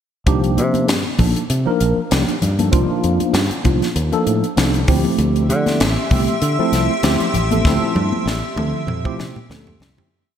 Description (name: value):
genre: electric jazz fusion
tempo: 97 BPM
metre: 4/4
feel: swing 55% on 16ths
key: unclear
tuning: A4 = 440 Hz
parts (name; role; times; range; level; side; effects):
- mellow tine electric piano; accompaniment; 0.3-10.1 s; F3 to Bb4; -20 LUFS; equal; medium stereo tremolo, analog chorus
- fingered electric bass; bass; 0.3-10.0 s; A1 to D3; -19 LUFS; equal; none
- crisp fusion drum kit; drums; 0.3-10.1 s; hi-hat, kick drum, snare drum, toms; -21 LUFS; equal; gated reverb
- congas; percussion; 0.7-10.1 s; none; -26 LUFS; left 4 dB; none
- icy glass pad; sustained chords; 5.5-10.1 s; G4 to E6; -24 LUFS; left 1 dB; chorus, built-in reverb
room: moderate lush hall reverb, RT60 3.0 s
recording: bright 1980s-style digital production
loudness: -15 LUFS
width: side -9 dB against mid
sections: 0.3-10.1 groove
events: fade-out 7.7-10.1; drum fill 7.7-10.1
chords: 0.3 Cm11; 4.9 Dm11